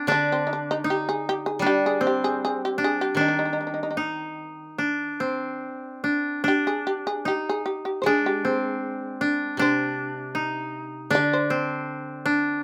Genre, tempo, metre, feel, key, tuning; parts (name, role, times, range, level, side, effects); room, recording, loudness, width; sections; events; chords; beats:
japanese traditional, Japanese chamber music; 76 BPM; 4/4; uneven beats, rubato; A4 = 438 Hz
koto; second line; 0.0-12.6 s; C4 to Eb4; -27 LUFS; equal
shamisen; melody; 0.1-11.7 s; C4 to D5; -29 LUFS; equal
koto; accompaniment; 0.1-12.6 s; C3 to Ab3; -32 LUFS; equal
light reverb; close, detailed microphones; -25 LUFS; mono
0.0-12.6 A section
| 0.10 0.86 1.62 2.40 | 3.18 3.98 4.79 5.62 | 6.44 7.25 8.06 8.84 | 9.60 10.37 11.14 11.90